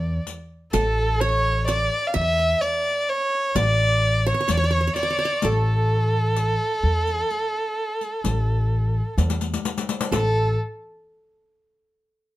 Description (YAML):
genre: Arabic maqam ensemble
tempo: 128 BPM (eighths)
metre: 10/8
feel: straight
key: unclear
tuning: A4 = 439 Hz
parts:
  - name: warm violin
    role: melody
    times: 0.0-10.6 s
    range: A4 to F5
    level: -23 LUFS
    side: right 1 dB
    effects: none
  - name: qanun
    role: second line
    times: 0.0-10.6 s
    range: A4 to E5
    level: -28 LUFS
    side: right 3 dB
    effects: slapback echo
  - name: upright bass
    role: bass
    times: 0.0-10.6 s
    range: A1 to E2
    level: -22 LUFS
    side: equal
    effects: none
  - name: riq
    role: percussion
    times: 0.3-10.6 s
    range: none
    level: -28 LUFS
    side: left 6 dB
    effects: none
room: light reverb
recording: none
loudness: -20 LUFS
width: side -16 dB against mid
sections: 0.0-10.1 A section; 10.1-12.4 B section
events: drum fill 9.2-10.1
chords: none